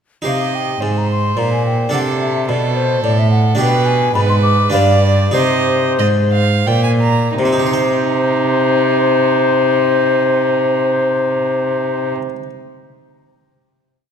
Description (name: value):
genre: classical, baroque-style sonata movement with continuo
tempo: 83-109 BPM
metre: 3/4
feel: straight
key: C minor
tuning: A4 = 440 Hz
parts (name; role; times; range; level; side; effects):
- harpsichord; accompaniment; 0.2-12.5 s; G2 to G5; -21 LUFS; right 1 dB; none
- baroque flute; melody; 0.3-12.1 s; C5 to D6; -17 LUFS; left 5 dB; none
- rich violin; second line; 0.3-12.1 s; Eb4 to Bb5; -21 LUFS; right 8 dB; none
- rich cello; bass; 0.3-12.1 s; G2 to C3; -17 LUFS; right 2 dB; none
room: moderate concert hall reverb, RT60 2.1 s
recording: none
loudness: -13 LUFS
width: side -7 dB against mid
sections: 0.3-7.4 A section; 7.4-11.7 final chord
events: slowing down 2.8-7.4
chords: 0.3 Cm; 1.9 D5; 3.6 G/B; 4.7 G7; 5.4 Cm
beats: | 0.26 0.82 1.38 | 1.93 2.48 3.03 | 3.59 4.16 4.74 | 5.36 6.00 6.67 | 7.38 8.10 8.82 | 9.54 10.27 10.99